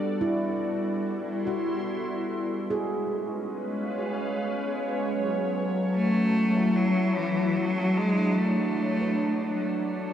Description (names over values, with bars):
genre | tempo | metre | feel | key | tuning
ambient | free time | none | none | unclear | A4 = 444 Hz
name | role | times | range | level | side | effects
evolving wavetable pad | sustained chords | 0.0-10.1 s | F#3 to C6 | -27 LUFS | equal | chorus, built-in reverb
bowed-like drone | drone | 0.0-5.2 s | B3 to F#4 | -41 LUFS | right 1 dB | built-in reverb
handpan | arpeggios | 0.2-10.1 s | E4 to E5 | -34 LUFS | right 1 dB | tape echo
clear cello | melody | 6.0-9.6 s | E3 to A3 | -26 LUFS | equal | tape echo
room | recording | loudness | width
wet cathedral reverb, RT60 5.5 s | dark, warm production | -24 LUFS | side -10 dB against mid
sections
0.0-5.1 A section; 5.1-10.1 B section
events
none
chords
0.1 C6; 2.6 C#7; 5.1 F#m7; 7.6 Dmaj7